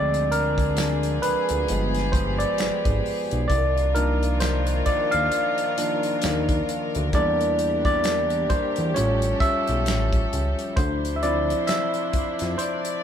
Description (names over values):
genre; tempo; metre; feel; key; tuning
R&B, neo-soul; 66 BPM; 4/4; swing 57% on 16ths; unclear; A4 = 440 Hz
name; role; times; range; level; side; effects
overdriven tine electric piano; accompaniment; 0.0-13.0 s; Eb3 to F5; -23 LUFS; equal; none
warm studio string section; sustained chords; 0.0-13.0 s; Eb3 to D5; -30 LUFS; left 4 dB; none
fat analog bass; bass; 0.0-12.6 s; G1 to F2; -26 LUFS; equal; none
warm soul drum kit; drums; 0.1-13.0 s; finger snaps, hi-hat, kick drum, snare drum; -27 LUFS; equal; none
room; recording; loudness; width
moderate small room reverb, RT60 0.5 s; band playing live in one room; -20 LUFS; side -9 dB against mid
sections
0.0-13.0 A section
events
tine electric piano solo 0.0-13.0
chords
0.0 Dm7b5; 1.7 G7b9; 3.5 Cm11; 7.1 Em7b5; 9.0 A7b13; 10.8 Dm9